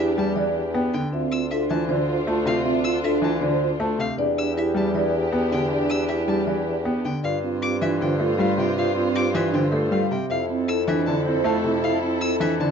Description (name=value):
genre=classical, minimalist pattern music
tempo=157 BPM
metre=4/4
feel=straight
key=unclear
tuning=A4 = 440 Hz
part: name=marimba with soft mallets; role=melody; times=0.0-12.7 s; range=G4 to A5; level=-30 LUFS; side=left 7 dB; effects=none
part: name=mellow French horn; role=second line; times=0.0-12.7 s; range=E4 to G4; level=-29 LUFS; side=right 3 dB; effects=none
part: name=rich symphonic violin section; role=sustained chords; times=0.0-12.7 s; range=D4 to C5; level=-32 LUFS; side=left 2 dB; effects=none
part: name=rich violin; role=arpeggios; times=0.0-12.7 s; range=E5 to E6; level=-32 LUFS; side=left 3 dB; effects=none
part: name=vibraphone with soft mallets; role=arpeggios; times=0.0-12.6 s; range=C4 to D5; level=-27 LUFS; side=right 8 dB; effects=none
part: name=clear bassoon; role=bass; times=0.0-12.7 s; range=D2 to G2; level=-27 LUFS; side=equal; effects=none
part: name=clear concert grand piano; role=accompaniment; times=0.2-12.7 s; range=C3 to C4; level=-25 LUFS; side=left 1 dB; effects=none
room=light reverb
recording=dark, warm production, nothing above 7.5 kHz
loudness=-20 LUFS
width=side -6 dB against mid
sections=0.0-7.2 A section; 7.2-12.7 B section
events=none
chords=0.0 Em7; 1.1 Dm7; 4.2 Em7; 7.2 G9sus4; 10.3 Fmaj7